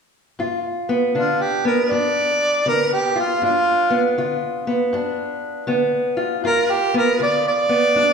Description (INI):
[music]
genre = acoustic country blues, solo or duo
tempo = 80 BPM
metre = 4/4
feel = swing 65% on 8ths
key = G mixolydian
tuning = A4 = 440 Hz
[part]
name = fingerpicked steel-string acoustic guitar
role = accompaniment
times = 0.4-8.1 s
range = G2 to F4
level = -20 LUFS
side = equal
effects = none
[part]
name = mellow harmonica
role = melody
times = 1.2-8.1 s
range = F4 to D5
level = -18 LUFS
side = right 1 dB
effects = none
[sound]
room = wet recital hall reverb, RT60 1.5 s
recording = recorded in a church or concert hall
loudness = -17 LUFS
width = side -5 dB against mid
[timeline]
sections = 0.4-8.1 A section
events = none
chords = 0.4 G7